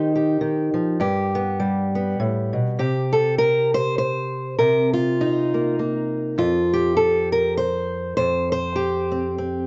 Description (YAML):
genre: folk, solo fingerstyle acoustic guitar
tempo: 100 BPM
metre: 3/4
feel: swing 57% on 8ths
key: C dorian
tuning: A4 = 439 Hz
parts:
  - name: fingerpicked old ladder-braced acoustic guitar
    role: solo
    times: 0.0-9.7 s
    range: F2 to C5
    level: -22 LUFS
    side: equal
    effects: none
room: light reverb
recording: dark, warm production, nothing above 7.6 kHz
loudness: -22 LUFS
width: mono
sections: 0.0-2.8 A section; 2.8-9.7 B section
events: none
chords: 0.0 Eb6; 1.0 G; 2.8 Cm7; 6.4 F5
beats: 0.41 | 1.01 1.60 2.20 | 2.80 3.39 3.99 | 4.59 5.18 5.78 | 6.38 6.97 7.57 | 8.17 8.77 9.37